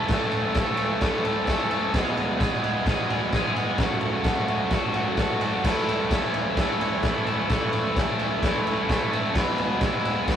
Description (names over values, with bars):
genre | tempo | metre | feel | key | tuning
garage rock duo or trio | 130 BPM | 4/4 | straight | A major | A4 = 440 Hz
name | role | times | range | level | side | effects
cranked stack guitar | riff | 0.0-10.4 s | E2 to A4 | -24 LUFS | equal | overdrive
raw garage drum kit | drums | 0.1-10.4 s | crash cymbal, kick drum, ride cymbal, snare drum | -25 LUFS | equal | none
room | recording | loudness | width
light reverb | rough rehearsal-room recording, tube saturation | -22 LUFS | side -9 dB against mid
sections
0.0-10.4 A section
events
none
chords
0.0 A; 2.0 E; 3.8 F#m; 5.6 A; 9.3 E